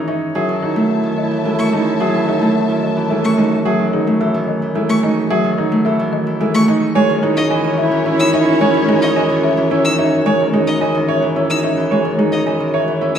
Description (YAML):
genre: classical, minimalist pattern music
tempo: 109 BPM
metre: 3/4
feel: straight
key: F# dorian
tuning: A4 = 441 Hz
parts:
  - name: Celtic harp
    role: accompaniment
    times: 0.0-13.2 s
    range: D#3 to D#4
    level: -17 LUFS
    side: equal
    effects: none
  - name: mellow bassoon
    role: bass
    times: 0.0-13.2 s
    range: F#2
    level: -21 LUFS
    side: right 2 dB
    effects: none
  - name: folk marimba with medium hard mallets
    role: melody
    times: 0.1-13.2 s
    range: G#4 to G#5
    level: -24 LUFS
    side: left 7 dB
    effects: none
  - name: bright baby grand piano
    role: arpeggios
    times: 0.1-13.2 s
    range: D#4 to D#5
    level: -21 LUFS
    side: right 6 dB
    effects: none
  - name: warm clarinet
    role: second line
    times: 0.4-3.4, 7.0-10.0 s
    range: E4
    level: -22 LUFS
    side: equal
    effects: none
  - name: warm studio string section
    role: sustained chords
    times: 0.4-3.5, 7.0-10.1 s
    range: C#4 to A5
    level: -24 LUFS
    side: left 1 dB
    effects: none
  - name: warm violin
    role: arpeggios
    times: 1.6-13.2 s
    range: D#5 to E6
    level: -26 LUFS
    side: left 2 dB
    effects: none
room: wet scoring stage reverb, RT60 2.0 s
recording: heard from further back in the room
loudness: -13 LUFS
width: side -8 dB against mid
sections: 0.0-13.2 A section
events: none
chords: 0.4 F#m9; 7.0 C#m/F#